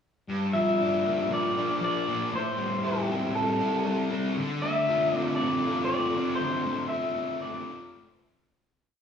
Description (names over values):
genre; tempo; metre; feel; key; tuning
rock; 117 BPM; 4/4; straight; D minor; A4 = 440 Hz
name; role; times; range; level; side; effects
fuzz guitar; riff; 0.3-8.5 s; G2 to F4; -28 LUFS; equal; distortion, lush chorus
electric guitar through a small old amp; melody; 0.5-8.2 s; G4 to E5; -28 LUFS; left 2 dB; slapback echo
room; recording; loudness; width
wet concert hall reverb, RT60 2.5 s; studio reverb; -25 LUFS; side -7 dB against mid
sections
0.3-8.5 verse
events
fade-out 6.4-8.5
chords
0.3 Gm7; 2.3 Am7; 4.4 Dm7